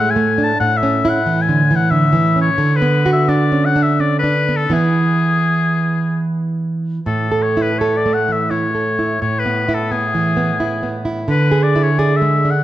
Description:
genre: romantic duo for oboe and classical guitar.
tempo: 76-93 BPM.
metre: 3/4.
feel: rubato.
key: A major.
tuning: A4 = 440 Hz.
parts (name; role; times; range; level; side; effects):
warm oboe; melody; 0.0-12.6 s; G#4 to A5; -18 LUFS; left 4 dB; none.
nylon-string guitar; accompaniment; 0.0-12.6 s; A2 to A4; -16 LUFS; right 2 dB; none.
room: moderate recital hall reverb, RT60 1.7 s.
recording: none.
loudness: -14 LUFS.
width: side -13 dB against mid.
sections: 0.0-7.0 A section; 7.0-12.6 B section.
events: none.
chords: 0.0 D5/A; 0.6 A; 2.6 Bm/D; 4.7 E; 7.0 A; 9.2 E/A; 11.3 E7/D.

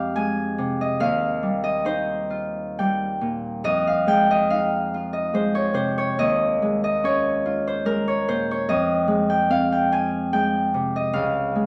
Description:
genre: classical, solo harp piece.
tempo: 63-75 BPM.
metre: 3/4.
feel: rubato.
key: F minor.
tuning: A4 = 440 Hz.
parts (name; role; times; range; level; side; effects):
Celtic harp; solo; 0.0-11.7 s; Db2 to Ab5; -22 LUFS; equal; none.
room: moderate recital hall reverb, RT60 1.4 s.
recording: dark, warm production.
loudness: -22 LUFS.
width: mono.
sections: 0.0-11.7 A section.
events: none.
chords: 0.0 Fm9; 1.0 Ebadd9; 3.6 Fm7; 6.2 Eb9sus4; 8.7 Fm7; 11.1 Dbadd9.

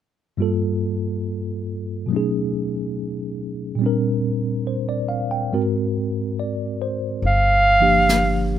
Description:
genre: jazz ballad.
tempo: 70 BPM.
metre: 4/4.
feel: swing 69% on 8ths.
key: unclear.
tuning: A4 = 440 Hz.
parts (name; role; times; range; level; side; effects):
tine electric piano; accompaniment; 0.4-8.6 s; G2 to G5; -22 LUFS; equal; medium stereo tremolo.
upright bass; bass; 7.2-8.6 s; G1; -21 LUFS; equal; none.
jazz brush drum kit; drums; 7.2-8.6 s; brushed snare drum, hi-hat, snare drum; -26 LUFS; left 1 dB; none.
breathy clarinet; melody; 7.3-8.6 s; F5; -16 LUFS; right 2 dB; none.
room: little or no reverb.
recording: close, detailed microphones.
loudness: -19 LUFS.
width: side -10 dB against mid.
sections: 0.4-7.2 A section; 7.2-8.6 B section.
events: none.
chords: 0.4 Gm7; 2.1 B13; 3.8 Bb69; 5.5 Ab9; 7.2 Gm7.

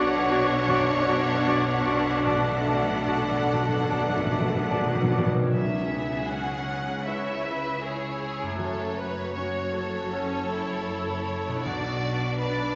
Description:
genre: cinematic, emotional film score for orchestra.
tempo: 73-80 BPM.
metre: 4/4.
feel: rubato.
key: B dorian.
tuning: A4 = 440 Hz.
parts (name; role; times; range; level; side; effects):
warm studio violin section; melody; 0.0-12.8 s; C#5 to F#5; -36 LUFS; equal; none.
dark clarinet; second line; 0.0-5.3 s; F#4; -34 LUFS; equal; none.
dark studio violin section; second line; 0.0-12.8 s; F#4 to C#5; -35 LUFS; equal; none.
mellow cor anglais; second line; 0.0-5.3 s; D5; -34 LUFS; equal; none.
dark studio viola section; accompaniment; 0.0-12.8 s; B3 to F#4; -36 LUFS; equal; none.
warm grand piano; accompaniment; 0.0-12.8 s; B1 to F#5; -39 LUFS; equal; none.
mellow French horn section; sustained chords; 0.0-5.1 s; A3 to D4; -33 LUFS; equal; none.
concert harp; arpeggios; 0.0-12.8 s; F#2 to C#6; -38 LUFS; equal; none.
warm studio cello section; bass; 0.0-12.8 s; F#2 to C#3; -36 LUFS; equal; none.
warm studio double bass section; bass; 0.0-12.8 s; F#1 to C#2; -38 LUFS; equal; none.
timpani; percussion; 0.0-5.5 s; B2; -31 LUFS; equal; none.
bright silver concert flute; second line; 0.3-5.2 s; A5 to C#6; -36 LUFS; equal; none.
room: wet scoring stage reverb, RT60 1.6 s.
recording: nothing above 7.7 kHz.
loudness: -26 LUFS.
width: mono.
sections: 0.0-5.5 A section; 5.5-12.8 A section.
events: timpani fill 2.3-5.5.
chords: 0.0 Bmadd9; 2.3 Bm7; 5.5 C#m7; 8.6 F#m; 11.6 Bm.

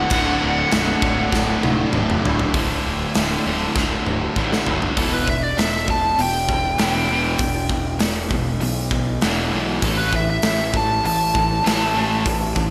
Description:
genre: hard rock.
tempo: 99 BPM.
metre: 4/4.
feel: straight.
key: unclear.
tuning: A4 = 439 Hz.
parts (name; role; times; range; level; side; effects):
biting lead guitar; melody; 0.0-12.7 s; A4 to A5; -25 LUFS; equal; overdrive, analog delay.
crunchy overdriven guitar; riff; 0.0-12.7 s; D2 to A3; -29 LUFS; equal; none.
high-gain distorted guitar; riff; 0.0-2.5 s; D2 to D3; -28 LUFS; equal; distortion.
tight distorted guitar; riff; 0.0-12.7 s; D2 to A3; -28 LUFS; equal; distortion, slapback echo.
fuzz picked electric bass; bass; 0.0-12.7 s; B0 to B1; -28 LUFS; equal; overdrive.
big rock drum kit; drums; 0.1-12.7 s; crash cymbal, hi-hat, kick drum, snare drum, toms; -25 LUFS; equal; none.
room: moderate concert hall reverb, RT60 2.0 s, studio reverb.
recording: big arena sound.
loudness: -20 LUFS.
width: mono.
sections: 0.0-2.5 A section; 2.5-5.0 B section; 5.0-12.7 C section.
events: drum fill 1.3-2.5, 3.8-5.0; lead electric guitar solo 5.0-12.7.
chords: 0.0 D; 2.5 D5; 5.0 Em; 9.8 A5.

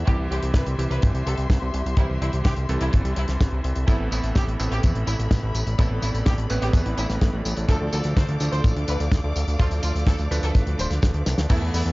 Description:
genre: italo disco.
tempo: 126 BPM.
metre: 4/4.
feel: straight.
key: unclear.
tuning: A4 = 440 Hz.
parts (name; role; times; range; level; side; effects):
warm studio string section; sustained chords; 0.0-11.9 s; G4 to D6; -35 LUFS; left 2 dB; none.
clear electric grand piano; stabs; 0.0-11.9 s; A2 to B4; -30 LUFS; right 2 dB; low-pass filter.
fat analog bass; bass; 0.0-11.9 s; D1 to E2; -24 LUFS; equal; none.
rich studio violin section; melody; 0.1-11.8 s; E4 to C5; -34 LUFS; equal; tape echo.
damped 70s drum kit; drums; 0.1-11.9 s; crash cymbal, hi-hat, snare drum, tambourine; -31 LUFS; equal; studio reverb.
kick drum; drums; 0.1-11.6 s; none; -20 LUFS; equal; studio reverb.
room: little or no reverb.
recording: dry, gritty hardware recording, cassette tape, nothing above 7.5 kHz.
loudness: -20 LUFS.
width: side -22 dB against mid.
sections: 0.0-11.5 A section.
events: drum fill 11.3.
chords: 0.1 C; 3.9 Amadd9; 7.7 Dm.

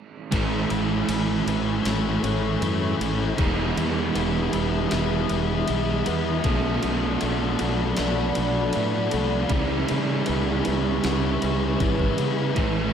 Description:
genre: rock, shoegaze and dream pop.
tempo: 78 BPM.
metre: 4/4.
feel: straight.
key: unclear.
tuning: A4 = 436 Hz.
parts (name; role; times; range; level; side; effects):
deep dark ambient pad; sustained chords; 1.6-12.9 s; G#4 to D#6; -31 LUFS; equal; chorus, built-in reverb.
direct-recorded clean electric guitar; arpeggios; 0.3-12.9 s; E3 to D4; -34 LUFS; left 6 dB; analog chorus, tape echo.
biting overdriven guitar; riff; 0.3-12.9 s; E2 to F#4; -28 LUFS; left 8 dB; ensemble chorus.
overdriven semi-hollow guitar; riff; 0.3-12.9 s; A2 to E4; -26 LUFS; right 6 dB; reverse reverb.
fuzz fingered electric bass; bass; 0.3-12.9 s; E1 to C#3; -27 LUFS; left 1 dB; overdrive.
gated 80s digital drum machine; drums; 0.3-12.8 s; kick drum, ride cymbal, snare drum; -32 LUFS; left 1 dB; gated reverb, gated reverb snare.
room: wet church reverb, RT60 3.6 s.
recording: dreamy mix soaked in reverb.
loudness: -21 LUFS.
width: side -8 dB against mid.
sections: 0.3-12.9 A section.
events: none.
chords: 0.3 Amaj7; 3.4 Emaj7; 6.4 Bm7; 9.5 C#m7.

